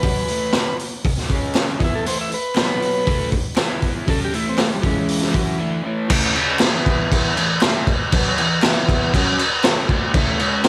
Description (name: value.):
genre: garage rock duo or trio.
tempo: 119 BPM.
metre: 4/4.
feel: straight.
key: A major.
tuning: A4 = 442 Hz.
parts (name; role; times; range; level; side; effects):
overdriven combo organ; melody; 0.0-5.8 s; E3 to E5; -26 LUFS; equal; spring reverb, cassette tape.
crunchy overdriven guitar; riff; 0.0-10.7 s; A2 to F#4; -26 LUFS; equal; phaser, cassette tape.
raw garage drum kit; drums; 0.0-10.7 s; crash cymbal, hi-hat, kick drum, snare drum; -20 LUFS; equal; cassette tape.
group handclap; percussion; 0.5-10.7 s; none; -34 LUFS; equal; none.
room: light reverb.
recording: home recording on cassette.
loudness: -19 LUFS.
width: mono.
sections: 0.0-6.1 A section; 6.1-10.7 B section.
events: break 5.6-6.1.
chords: 0.0 A; 1.3 C#5; 1.8 A5; 2.6 B5; 3.1 Asus24; 3.6 E5; 4.1 A; 4.8 C#5; 5.3 A; 6.6 E5; 7.4 A5; 8.6 E5; 9.1 A.